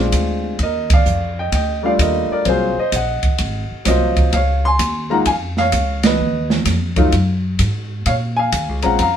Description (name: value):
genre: jazz piano trio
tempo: 129 BPM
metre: 4/4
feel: swing 66% on 8ths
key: unclear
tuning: A4 = 440 Hz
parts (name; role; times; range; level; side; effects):
- clear baby grand piano; melody; 0.0-9.2 s; Gb3 to C6; -18 LUFS; left 1 dB; none
- upright bass; bass; 0.0-9.2 s; Ab1 to Bb2; -20 LUFS; equal; none
- open jazz drum kit; drums; 0.1-9.1 s; hi-hat, kick drum, ride cymbal, snare drum; -20 LUFS; right 2 dB; none
room: moderate studio reverb, RT60 0.6 s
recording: band playing live in one room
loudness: -15 LUFS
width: side -9 dB against mid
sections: 0.6-9.2 A section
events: band accent 0.8, 6.0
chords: 0.0 Bb7; 0.6 Ebmaj9#11; 2.5 Ab13; 4.3 Db; 6.2 B(#11) (rootless); 8.1 Bbm7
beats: 0.13 | 0.60 1.06 1.53 2.00 | 2.46 2.93 3.40 3.86 | 4.33 4.80 5.26 5.73 | 6.20 6.66 7.13 7.59 | 8.06 8.53 8.99